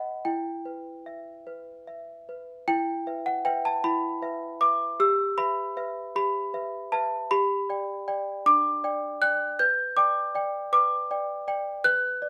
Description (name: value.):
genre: classical, lullaby for celesta.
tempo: 49-54 BPM (dotted quarters).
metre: 6/8.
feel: rubato.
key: E minor.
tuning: A4 = 444 Hz.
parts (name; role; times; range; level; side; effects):
small celesta; solo; 0.0-12.3 s; D4 to G6; -27 LUFS; equal; none.
room: wet studio reverb, RT60 0.9 s.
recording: band playing live in one room.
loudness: -26 LUFS.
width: mono.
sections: 0.0-2.7 A section; 2.7-12.3 B section.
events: none.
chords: 0.2 E5; 5.0 Em/G; 7.3 G; 9.6 G/B.